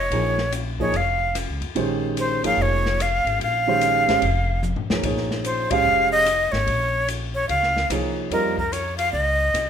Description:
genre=modal jazz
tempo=146 BPM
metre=4/4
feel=swing 65% on 8ths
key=Bb dorian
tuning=A4 = 440 Hz
part: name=breathy bright jazz flute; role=melody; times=0.0-9.7 s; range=Bb4 to F5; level=-21 LUFS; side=equal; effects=none
part: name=upright bass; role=bass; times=0.0-9.7 s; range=F1 to F2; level=-27 LUFS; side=equal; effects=none
part: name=warm baby grand piano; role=accompaniment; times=0.1-8.6 s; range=Eb3 to F5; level=-25 LUFS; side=right 3 dB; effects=none
part: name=open jazz drum kit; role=drums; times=0.1-9.7 s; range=hi-hat, kick drum, ride cymbal, rim click, snare drum, toms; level=-30 LUFS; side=left 4 dB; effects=none
room=moderate large studio reverb, RT60 0.9 s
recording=minimal, uncompressed stereo recording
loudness=-19 LUFS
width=side -8 dB against mid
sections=0.0-9.7 A section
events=drum fill 4.6-5.0; band accent 5.7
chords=0.0 Bbm11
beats=| 0.12 0.53 0.94 1.35 | 1.76 2.17 2.58 2.99 | 3.40 3.81 4.22 4.63 | 5.04 5.45 5.86 6.27 | 6.68 7.09 7.50 7.91 | 8.31 8.72 9.13 9.54

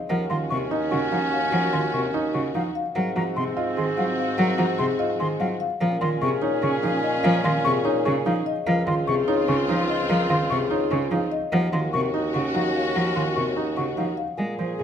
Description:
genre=classical, minimalist pattern music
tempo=294 BPM (eighths)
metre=7/8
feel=straight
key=unclear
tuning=A4 = 440 Hz
part: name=marimba with soft mallets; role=melody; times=0.0-14.8 s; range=Ab4 to Ab5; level=-28 LUFS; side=left 9 dB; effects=none
part: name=bright clarinet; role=second line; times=0.1-14.8 s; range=C4 to Ab4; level=-31 LUFS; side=right 3 dB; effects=none
part: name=rich cello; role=accompaniment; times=0.1-14.8 s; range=C3 to Ab3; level=-26 LUFS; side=right 1 dB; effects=none
part: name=rich studio string section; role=sustained chords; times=0.1-14.8 s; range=C4 to Ab4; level=-32 LUFS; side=left 4 dB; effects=none
part: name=dark grand piano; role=arpeggios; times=0.1-14.8 s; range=Eb4 to C5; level=-29 LUFS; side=right 7 dB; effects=none
part: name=dark bassoon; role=bass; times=0.1-14.8 s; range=Db2 to Bb2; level=-30 LUFS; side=right 1 dB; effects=none
part: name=concert flute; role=arpeggios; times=0.3-14.0 s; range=F5 to Db6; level=-30 LUFS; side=left 3 dB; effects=none
room=moderate recital hall reverb, RT60 1.8 s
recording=close, detailed microphones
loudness=-21 LUFS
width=side -8 dB against mid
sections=0.0-14.4 A section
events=none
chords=0.1 Ebm9; 3.0 Ab9; 5.8 Bbm9; 8.7 Dbmaj9; 11.5 Ebm9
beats=| 0.10 0.30 0.50 0.71 0.91 1.12 1.32 | 1.52 1.73 1.93 2.14 2.34 2.54 2.75 | 2.95 3.16 3.36 3.56 3.77 3.97 4.18 | 4.38 4.59 4.79 4.99 5.20 5.40 5.61 | 5.81 6.01 6.22 6.42 6.63 6.83 7.04 | 7.24 7.44 7.65 7.85 8.05 8.26 8.46 | 8.67 8.87 9.08 9.28 9.48 9.69 9.89 | 10.10 10.30 10.50 10.71 10.91 11.12 11.32 | 11.53 11.73 11.93 12.14 12.34 12.54 12.75 | 12.95 13.16 13.36 13.56 13.77 13.97 14.18 | 14.38 14.59 14.79

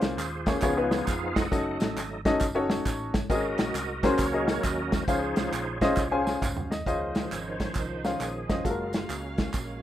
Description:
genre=uptempo gospel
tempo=135 BPM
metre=4/4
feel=swing 65% on 8ths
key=Db major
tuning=A4 = 440 Hz
part: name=clear upright piano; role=accompaniment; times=0.0-9.4 s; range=Ab2 to Ab5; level=-28 LUFS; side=left 2 dB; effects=none
part: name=bright tonewheel organ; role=sustained chords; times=0.0-9.8 s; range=Eb3 to Gb5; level=-33 LUFS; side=right 3 dB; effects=fast rotary speaker, chorus vibrato
part: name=hollow-body short-scale fingered electric bass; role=bass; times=0.0-9.8 s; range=F1 to F2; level=-38 LUFS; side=right 1 dB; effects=none
part: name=modern studio drum kit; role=drums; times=0.0-9.7 s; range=hi-hat, kick drum, snare drum, toms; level=-29 LUFS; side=equal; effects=none
part: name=tambourine and handclaps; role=percussion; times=0.0-9.7 s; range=none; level=-39 LUFS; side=right 4 dB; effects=none
part: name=warm studio string section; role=sustained chords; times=6.9-9.8 s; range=F3 to F5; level=-41 LUFS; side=right 2 dB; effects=none
room=light reverb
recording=rough home demo mix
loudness=-25 LUFS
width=side -12 dB against mid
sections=0.0-6.9 A section; 6.9-9.8 B section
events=tonewheel organ solo 0.0-6.9, 6.9-9.8; drum fill 6.0-6.9; upright piano fill 6.0-6.9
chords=0.0 Bbm9; 0.6 Db7; 1.5 Gbm6; 3.3 Ab9sus4; 5.1 Dbmaj7; 6.9 Dbmaj9; 8.6 Gbmaj9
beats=0.18 0.62 1.07 | 1.51 1.96 2.40 2.85 | 3.30 3.74 4.19 4.63 | 5.08 5.52 5.97 6.42 | 6.86 7.31 7.75 8.20 | 8.65 9.10 9.54

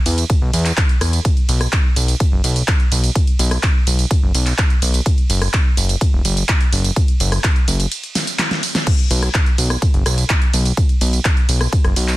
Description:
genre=EDM, festival progressive house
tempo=126 BPM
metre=4/4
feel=straight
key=unclear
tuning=A4 = 444 Hz
part: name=fat analog bass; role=bass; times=0.1-12.2 s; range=E1 to E2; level=-17 LUFS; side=equal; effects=tube saturation, sidechain pumping
part: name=big-room dance drum kit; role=drums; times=0.1-12.2 s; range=crash cymbal, handclaps, hi-hat, ride cymbal, rim click, snare drum, tambourine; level=-20 LUFS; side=right 1 dB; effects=none
part: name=electronic kick drum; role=drums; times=0.3-11.8 s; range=none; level=-15 LUFS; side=equal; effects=none
room=little or no reverb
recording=dense, heavily limited modern master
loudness=-14 LUFS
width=side -17 dB against mid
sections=0.0-8.9 A section; 8.9-12.2 A section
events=drop 0.0-8.9, 8.9-12.2; break 7.9-8.9; drum fill 8.2-8.9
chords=none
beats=0.30 0.77 | 1.25 1.73 2.20 2.68 | 3.15 3.63 4.11 4.58 | 5.06 5.54 6.01 6.49 | 6.96 7.44 7.92 8.39 | 8.87 9.35 9.82 10.30 | 10.77 11.25 11.73

